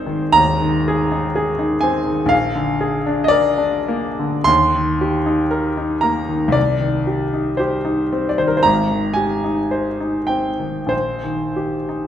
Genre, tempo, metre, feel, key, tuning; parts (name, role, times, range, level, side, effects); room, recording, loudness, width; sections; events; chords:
classical, romantic nocturne for solo piano; 46-63 BPM; 4/4; rubato; Eb major; A4 = 440 Hz
clear grand piano; solo; 0.0-12.1 s; Ab1 to C6; -16 LUFS; equal
wet recital hall reverb, RT60 1.5 s; -16 LUFS; side -10 dB against mid
0.0-12.1 A section
0.0 Ab; 2.3 Bb7; 4.5 Eb; 6.6 Cm; 8.6 Abmaj7; 10.9 Eb/Bb